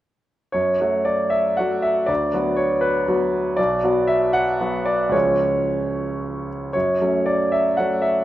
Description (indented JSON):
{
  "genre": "classical, romantic character piece for solo piano",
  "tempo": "73-82 BPM (dotted quarters)",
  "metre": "6/8",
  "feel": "rubato",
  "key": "F# minor",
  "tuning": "A4 = 440 Hz",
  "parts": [
    { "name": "clear concert grand piano", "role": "solo", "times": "0.5-8.2 s", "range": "B1 to F#5", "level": "-18 LUFS", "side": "equal", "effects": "none" }
  ],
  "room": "moderate recital hall reverb, RT60 1.3 s",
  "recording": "none",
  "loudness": "-18 LUFS",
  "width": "side -14 dB against mid",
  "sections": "0.5-8.2 A section",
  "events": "none",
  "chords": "0.5 F#m; 2.1 Bm/D; 3.6 Bm; 5.1 C#; 6.7 F#m"
}